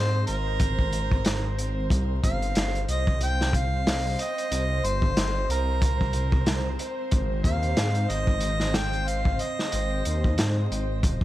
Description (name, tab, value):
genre	trip hop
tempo	92 BPM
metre	4/4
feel	swing 57% on 16ths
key	C minor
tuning	A4 = 440 Hz
part	mellow harmonica	melody	0.0-10.4 s	Bb4 to G5	-30 LUFS	right 1 dB	tape echo
part	string machine, cellos	sustained chords	0.0-11.2 s	C5	-34 LUFS	equal	ensemble chorus
part	dark detuned saw bass	bass	0.0-11.2 s	Eb1 to Ab2	-27 LUFS	equal	tube saturation
part	crunchy breakbeat drum kit	drums	0.3-11.2 s	hi-hat, kick drum, snare drum	-26 LUFS	equal	none
room	little or no reverb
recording	vinyl crackle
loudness	-23 LUFS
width	side -15 dB against mid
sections	0.0-11.2 A section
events	none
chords	0.0 Ab; 1.9 C7(no3); 7.1 Ab